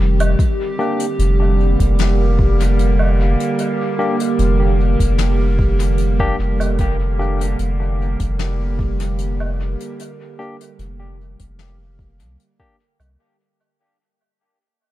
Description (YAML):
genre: ambient dub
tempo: 75 BPM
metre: 4/4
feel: straight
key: unclear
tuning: A4 = 440 Hz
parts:
  - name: warbly tape-like pad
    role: sustained chords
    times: 0.0-13.2 s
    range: D3 to Bb4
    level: -22 LUFS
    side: right 2 dB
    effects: chorus, built-in reverb, phaser
  - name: warm sub bass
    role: bass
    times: 0.0-13.2 s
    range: F1 to C2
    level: -17 LUFS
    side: equal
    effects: none
  - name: jazz brush drum kit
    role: drums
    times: 0.2-13.2 s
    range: hi-hat, snare drum, woodblock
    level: -29 LUFS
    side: left 2 dB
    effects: dub echo
  - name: electronic kick drum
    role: drums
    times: 0.4-12.8 s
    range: none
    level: -19 LUFS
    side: equal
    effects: overdrive
  - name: barky tine electric piano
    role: stabs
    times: 0.8-12.8 s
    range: Bb3 to G4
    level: -26 LUFS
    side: left 3 dB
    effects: dub echo
room: studio ambience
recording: none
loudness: -15 LUFS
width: side -14 dB against mid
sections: 0.0-13.2 A section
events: fade-out 4.7-13.2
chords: 0.4 Gm/F